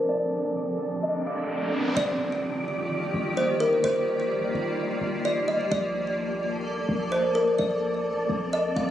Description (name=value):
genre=hip hop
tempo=128 BPM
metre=4/4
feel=half-time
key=unclear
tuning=A4 = 439 Hz
part: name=kalimba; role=melody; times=0.0-8.9 s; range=Bb4 to F5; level=-27 LUFS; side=equal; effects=ping-pong delay
part: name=granular cloud pad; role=sustained chords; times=0.0-8.9 s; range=Bb2 to D5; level=-30 LUFS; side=equal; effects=built-in reverb
part: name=Celtic harp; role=arpeggios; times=0.0-4.5 s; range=D4 to A5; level=-38 LUFS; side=right 1 dB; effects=ping-pong delay
part: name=wind-like tuned noise texture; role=texture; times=0.0-8.9 s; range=G3 to D5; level=-34 LUFS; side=left 2 dB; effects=built-in reverb
part: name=riser and impact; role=sound effects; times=1.2-3.8 s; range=none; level=-34 LUFS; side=equal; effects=none
part: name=clean 808-style bass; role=bass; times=2.0-8.9 s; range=Eb1 to Bb1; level=-35 LUFS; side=equal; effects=none
room=light reverb, small room ambience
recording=recorded on a phone in the room, studio ambience, low-pass filter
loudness=-24 LUFS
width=side -11 dB against mid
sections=0.0-2.0 A section; 2.0-8.9 B section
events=filter sweep 0.0-2.0; riser 1.2-2.0; impact 2.0-3.8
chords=0.0 Bbmaj7; 2.0 Ebmaj7; 5.7 Bbmaj7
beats=| 0.09 0.56 1.03 1.50 | 1.97 2.44 2.90 3.37 | 3.84 4.31 4.78 5.25 | 5.72 6.19 6.66 7.12 | 7.59 8.06 8.53